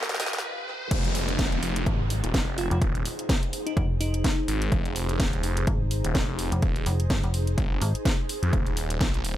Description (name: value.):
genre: bass house.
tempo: 126 BPM.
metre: 4/4.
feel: swing 56% on 16ths.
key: F dorian.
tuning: A4 = 440 Hz.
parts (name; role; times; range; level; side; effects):
muted studio string section; sustained chords; 0.0-0.9 s; Eb3 to G4; -52 LUFS; left 4 dB; none.
phased detuned saw bass; bass; 0.0-9.4 s; Eb1 to F2; -29 LUFS; equal; phaser, tube saturation, sidechain pumping, high-pass filter.
garage drum kit; drums; 0.0-9.4 s; crash cymbal, hi-hat, snare drum; -32 LUFS; equal; none.
riser, swell and downlifter; sound effects; 0.0-4.7 s; none; -34 LUFS; left 1 dB; none.
ethereal airy pad; texture; 0.0-9.4 s; D4 to C5; -37 LUFS; equal; ensemble chorus, built-in reverb, sidechain pumping.
electronic kick drum; drums; 0.9-9.1 s; none; -26 LUFS; equal; none.
metallic FM bass; bass; 1.9-7.9 s; F1 to Ab1; -26 LUFS; equal; sidechain pumping.
bell-like FM electric piano; melody; 2.6-4.7 s; Eb4 to F4; -33 LUFS; equal; chorus, digital delay.
room: little or no reverb.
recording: high-pass filter.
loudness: -23 LUFS.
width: side -13 dB against mid.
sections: 0.9-9.4 A section.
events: drum fill 0.0-0.4; riser 0.0-0.9; swell 0.0-0.9; break 0.4-0.9; drop 0.9-9.4.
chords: 0.0 Eb; 0.9 Fm; 8.5 Eb.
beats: 0.43 | 0.91 1.39 1.86 2.34 | 2.82 3.29 3.77 4.25 | 4.72 5.20 5.67 6.15 | 6.63 7.10 7.58 8.05 | 8.53 9.01.